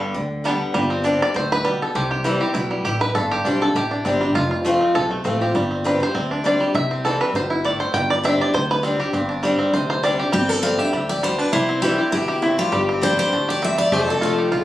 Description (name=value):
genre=bluegrass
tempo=201 BPM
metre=4/4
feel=swing 54% on 8ths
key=G mixolydian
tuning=A4 = 438 Hz
part: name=picked steel-string acoustic guitar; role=melody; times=0.0-0.4, 10.3-14.5 s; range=E4 to G5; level=-22 LUFS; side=left 1 dB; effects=none
part: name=picked old ladder-braced acoustic guitar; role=accompaniment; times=0.0-14.6 s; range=E2 to G4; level=-22 LUFS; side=left 1 dB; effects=none
part: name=upright bass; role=bass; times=0.1-14.6 s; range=F1 to D2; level=-27 LUFS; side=equal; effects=none
part: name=bluegrass banjo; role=melody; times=0.5-14.6 s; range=G3 to G5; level=-22 LUFS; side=right 1 dB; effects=none
part: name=lap resonator guitar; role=second line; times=10.3-14.6 s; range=C4 to A4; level=-24 LUFS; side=left 1 dB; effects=none
room=moderate studio reverb, RT60 0.6 s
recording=recorded on a phone in the room, studio reverb, compression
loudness=-18 LUFS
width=side -14 dB against mid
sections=0.7-10.3 A section; 10.3-14.6 B section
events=five-string banjo solo 0.7-10.3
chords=0.0 G; 0.7 Gsus4; 1.9 C; 3.1 Gsus4; 4.4 F; 5.5 Gsus4; 6.7 C; 7.9 Gsus4; 11.5 C; 12.7 Gsus4; 13.9 F